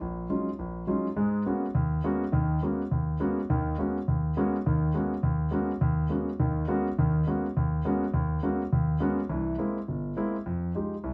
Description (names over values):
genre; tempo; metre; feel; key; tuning
jazz; 207 BPM; 4/4; swing 60% on 8ths; G# minor; A4 = 440 Hz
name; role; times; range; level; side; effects
warm concert grand piano; solo; 0.0-11.1 s; G1 to G4; -28 LUFS; equal; none
room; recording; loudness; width
moderate studio reverb, RT60 0.6 s; dark, warm production; -28 LUFS; mono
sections
0.0-1.2 A section; 1.2-10.4 B section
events
none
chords
0.0 Ebm11; 1.2 G#m11; 9.3 C7b13; 10.4 Fm9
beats
| 0.00 0.30 0.59 0.88 | 1.17 1.46 1.75 2.04 | 2.33 2.62 2.91 3.20 | 3.49 3.78 4.07 4.36 | 4.65 4.94 5.23 5.52 | 5.81 6.10 6.39 6.68 | 6.97 7.26 7.55 7.84 | 8.13 8.42 8.71 9.00 | 9.29 9.58 9.87 10.16 | 10.45 10.74 11.03